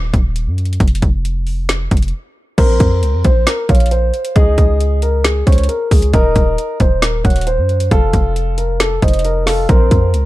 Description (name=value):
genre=hip hop, trap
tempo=135 BPM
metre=4/4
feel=half-time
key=Bb minor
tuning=A4 = 439 Hz
part: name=hard-hitting 808-style bass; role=bass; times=0.0-10.3 s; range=Eb1 to Gb2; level=-15 LUFS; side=equal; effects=none
part: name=trap drum kit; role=drums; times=0.1-10.2 s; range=crash cymbal, hi-hat, kick drum, snare drum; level=-14 LUFS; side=equal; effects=none
part: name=dark concert grand piano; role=melody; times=2.6-10.3 s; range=Ab4 to Db5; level=-18 LUFS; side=left 1 dB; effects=digital delay
part: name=soft octave-layered synth lead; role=second line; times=2.6-10.1 s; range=C5 to Gb5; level=-24 LUFS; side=right 2 dB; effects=chorus, digital delay
room=little or no reverb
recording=dark, warm production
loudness=-12 LUFS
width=side -17 dB against mid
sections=0.0-2.6 A section; 2.6-10.3 B section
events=break 0.0-2.6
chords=0.0 Ebm; 0.8 N.C.; 2.6 Bbsus2; 4.4 Db5; 6.1 Ebm; 7.9 F; 9.7 Bbmadd9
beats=0.36 | 0.80 1.25 1.69 2.13 | 2.58 3.02 3.47 3.91 | 4.36 4.80 5.25 5.69 | 6.13 6.58 7.02 7.47 | 7.91 8.36 8.80 9.25 | 9.69 10.13